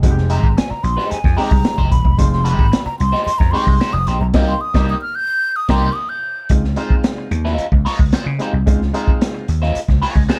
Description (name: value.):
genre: funk.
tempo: 111 BPM.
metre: 4/4.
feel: straight.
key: unclear.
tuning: A4 = 440 Hz.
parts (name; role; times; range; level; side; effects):
clear upright piano; stabs; 0.0-10.4 s; Ab3 to C5; -28 LUFS; equal; none.
vintage slap bass; bass; 0.0-10.3 s; Eb1 to Db3; -20 LUFS; equal; none.
crunchy breakbeat drum kit; drums; 0.0-10.4 s; crash cymbal, hi-hat, kick drum, snare drum; -19 LUFS; equal; none.
breathy mellow silver concert flute; melody; 0.3-6.5 s; Ab5 to G6; -23 LUFS; equal; none.
electric guitar at the edge of break-up; accompaniment; 0.3-10.4 s; Ab3 to D5; -26 LUFS; equal; wah, phaser.
room: light reverb.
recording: none.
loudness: -17 LUFS.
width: mono.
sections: 0.0-6.5 A section; 6.5-10.4 B section.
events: flute solo 0.0-6.5; band accent 4.3-6.5.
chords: 0.0 Fm9; 4.3 Cm7; 6.5 Dbmaj9.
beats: | 0.03 0.57 1.11 1.65 | 2.19 2.73 3.27 3.81 | 4.34 4.88 5.43 5.97 | 6.51 7.05 7.59 8.13 | 8.67 9.21 9.75 10.29.